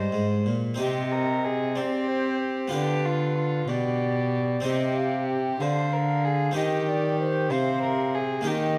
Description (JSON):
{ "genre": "classical, baroque-style sonata movement with continuo", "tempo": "62 BPM (dotted quarters)", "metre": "6/8", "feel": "straight", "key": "C minor", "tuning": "A4 = 440 Hz", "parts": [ { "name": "bright baroque flute", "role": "melody", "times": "0.0-8.8 s", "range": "B4 to G5", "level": "-33 LUFS", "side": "equal", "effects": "none" }, { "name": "dark violin", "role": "second line", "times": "0.0-8.8 s", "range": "F4 to C5", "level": "-33 LUFS", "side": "equal", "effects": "none" }, { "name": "harpsichord", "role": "accompaniment", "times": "0.0-8.8 s", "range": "Ab2 to G4", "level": "-34 LUFS", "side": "equal", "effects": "none" }, { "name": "rich cello", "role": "bass", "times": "0.0-8.8 s", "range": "G2 to C4", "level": "-29 LUFS", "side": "equal", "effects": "none" } ], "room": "moderate recital hall reverb, RT60 1.9 s", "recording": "none", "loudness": "-26 LUFS", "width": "mono", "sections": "0.8-8.8 A section", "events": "none", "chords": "0.0 Cm; 2.7 G7/D; 4.6 Cm" }